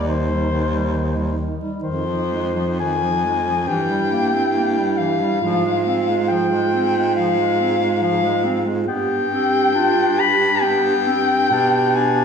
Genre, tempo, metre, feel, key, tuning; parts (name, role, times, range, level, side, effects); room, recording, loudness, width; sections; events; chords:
classical, lyrical piece for single-reed quartet; 69 BPM; 4/4; rubato; C minor; A4 = 440 Hz
mellow soprano saxophone; melody; 0.0-12.2 s; C5 to B5; -20 LUFS; left 5 dB
warm alto saxophone; second line; 0.0-12.2 s; Eb4 to G4; -23 LUFS; right 6 dB
bright clarinet; accompaniment; 0.0-12.2 s; Eb3 to D4; -25 LUFS; left 2 dB
bright baritone saxophone; bass; 0.0-12.2 s; Eb2 to B2; -23 LUFS; right 1 dB
wet recital hall reverb, RT60 1.4 s; heard from further back in the room; -16 LUFS; side -6 dB against mid
0.0-12.2 A section
0.0 Cm/Eb; 1.8 Fm7; 3.7 C7/G; 5.4 Fm/Ab; 8.9 G